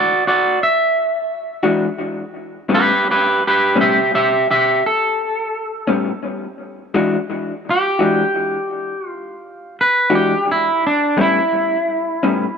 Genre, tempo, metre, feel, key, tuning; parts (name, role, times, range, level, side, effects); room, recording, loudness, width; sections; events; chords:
blues; 57 BPM (dotted quarters); 12/8; straight; A4 = 440 Hz
electric guitar through a small old amp; melody; 0.0-12.6 s; D4 to E5; -16 LUFS; right 1 dB
electric guitar through a small old amp; accompaniment; 1.6-12.5 s; A2 to F#4; -20 LUFS; left 3 dB; tremolo, analog delay
moderate plate reverb, RT60 3.2 s; echo-heavy mix; -15 LUFS; side -6 dB against mid
0.0-12.6 A section
clean electric guitar solo 0.0-12.6
0.0 E9; 2.7 A9; 6.9 E9; 11.2 A9